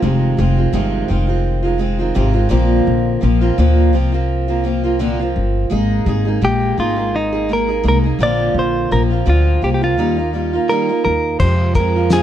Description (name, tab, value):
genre	acoustic pop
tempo	84 BPM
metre	4/4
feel	swing 55% on 16ths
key	Bb mixolydian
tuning	A4 = 440 Hz
part	picked steel-string acoustic guitar	accompaniment	0.0-12.2 s	F2 to Ab4	-18 LUFS	right 1 dB	none
part	upright bass	bass	0.0-12.2 s	F1 to F2	-17 LUFS	left 1 dB	none
part	direct-recorded clean electric guitar	melody	6.4-12.2 s	Eb4 to D5	-18 LUFS	right 1 dB	none
part	cloth-damped thuddy drum kit	drums	11.4-12.2 s	crash cymbal, kick drum, shaker, snare drum	-18 LUFS	left 2 dB	none
room	little or no reverb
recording	dark, warm production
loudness	-14 LUFS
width	side -11 dB against mid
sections	0.0-11.4 A section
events	none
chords	0.0 Fm7; 2.5 Bbadd9; 5.7 Absus2; 8.2 Bbadd9; 10.0 Ebadd9; 11.4 Fm